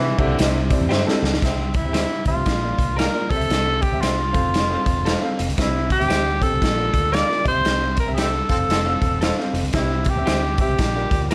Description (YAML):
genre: uptempo 1960s-style soul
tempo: 115 BPM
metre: 4/4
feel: swing 62% on 8ths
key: C mixolydian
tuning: A4 = 439 Hz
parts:
  - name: breathy tenor saxophone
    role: melody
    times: 0.0-11.3 s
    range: C3 to D5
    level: -25 LUFS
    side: equal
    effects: slapback echo, plate reverb
  - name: warm upright piano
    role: accompaniment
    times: 0.0-11.3 s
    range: Bb2 to G5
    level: -30 LUFS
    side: equal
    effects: plate reverb
  - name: vintage muted fingered electric bass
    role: bass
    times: 0.0-11.3 s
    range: E1 to C3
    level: -28 LUFS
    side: equal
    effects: none
  - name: raw garage drum kit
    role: drums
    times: 0.2-11.3 s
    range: crash cymbal, hi-hat, kick drum, snare drum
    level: -24 LUFS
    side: equal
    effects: none
  - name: electric guitar through a small old amp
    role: stabs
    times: 0.9-11.3 s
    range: G4 to F5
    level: -29 LUFS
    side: equal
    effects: plate reverb
  - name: clear horn section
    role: second line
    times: 8.2-8.9 s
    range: C4 to A4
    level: -33 LUFS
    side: equal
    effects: plate reverb
room: light reverb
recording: none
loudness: -20 LUFS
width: mono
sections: 0.0-1.4 A section; 1.4-11.3 B section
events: drum fill 0.9-1.4; band accent 7.7-9.7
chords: 0.0 C; 2.5 Bb; 3.2 C; 4.3 F; 5.6 C; 6.6 Bb; 7.4 C; 8.4 F; 9.7 C; 10.8 Bb